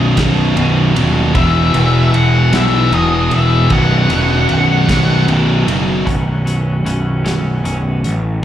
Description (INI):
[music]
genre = quiet-loud alternative rock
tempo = 51 BPM (dotted quarters)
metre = 6/8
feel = straight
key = unclear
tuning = A4 = 440 Hz
[part]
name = heavy high-gain guitar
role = riff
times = 0.0-6.1 s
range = B1 to E3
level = -21 LUFS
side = equal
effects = distortion, slapback echo
[part]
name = overdriven electric guitar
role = riff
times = 0.0-6.0 s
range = B1 to E3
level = -19 LUFS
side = left 7 dB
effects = slapback echo
[part]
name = thick fuzz guitar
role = riff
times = 0.0-6.0 s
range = B1 to E3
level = -19 LUFS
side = right 7 dB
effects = distortion
[part]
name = fuzz picked electric bass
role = bass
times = 0.0-8.4 s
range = B0 to B1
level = -15 LUFS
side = equal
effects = overdrive
[part]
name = loose indie drum kit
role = drums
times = 0.2-8.2 s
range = hi-hat, kick drum, ride cymbal, snare drum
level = -21 LUFS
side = right 1 dB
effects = none
[part]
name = octave-fuzz lead guitar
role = melody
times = 1.4-5.2 s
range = D#5 to F#5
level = -18 LUFS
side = left 3 dB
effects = distortion, slapback echo
[part]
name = twelve-string electric guitar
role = arpeggios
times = 6.1-8.2 s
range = F#2 to C#4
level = -23 LUFS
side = left 1 dB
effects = harmonic tremolo, analog delay
[sound]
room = small room ambience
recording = live gig heard through the venue's PA, club reverb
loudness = -11 LUFS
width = side -11 dB against mid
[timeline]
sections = 0.0-6.1 A section; 6.1-8.4 B section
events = none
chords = 0.0 B; 1.3 E5; 3.7 B5; 6.1 Bsus2